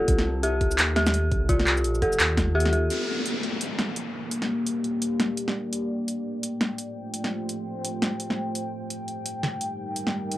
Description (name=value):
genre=half-time drum and bass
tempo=170 BPM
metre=4/4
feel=swing 59% on 16ths, half-time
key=G minor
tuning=A4 = 440 Hz
part: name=dark detuned synth bell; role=arpeggios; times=0.0-2.9 s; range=F4 to A4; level=-26 LUFS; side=left 1 dB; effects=chorus, vintage 12-bit sampler grit, cassette tape, tape echo
part: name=phased detuned saw bass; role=bass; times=0.0-2.9 s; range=Bb1 to Eb2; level=-26 LUFS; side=equal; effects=phaser
part: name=metallic inharmonic drone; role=texture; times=0.1-2.9 s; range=A4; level=-42 LUFS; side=right 5 dB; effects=none
part: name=drum and bass drum kit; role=drums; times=0.1-10.4 s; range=handclaps, hi-hat, shaker, snare drum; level=-26 LUFS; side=equal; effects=overdrive, cassette tape
part: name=electronic kick drum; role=drums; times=0.1-2.5 s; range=none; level=-25 LUFS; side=equal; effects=overdrive, cassette tape
part: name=deep dark ambient pad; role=sustained chords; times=3.6-10.4 s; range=G3 to G5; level=-29 LUFS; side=left 1 dB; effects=chorus, built-in reverb, vintage 12-bit sampler grit, sidechain pumping, cassette tape
part: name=downlifter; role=sound effects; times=2.9-5.7 s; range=none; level=-32 LUFS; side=left 1 dB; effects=none
room=moderate studio reverb, RT60 0.5 s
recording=home recording on cassette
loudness=-24 LUFS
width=side -15 dB against mid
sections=0.0-2.9 A section; 2.9-10.4 B section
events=none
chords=0.1 Cm; 2.9 Gm; 5.7 Fadd9; 8.6 Eb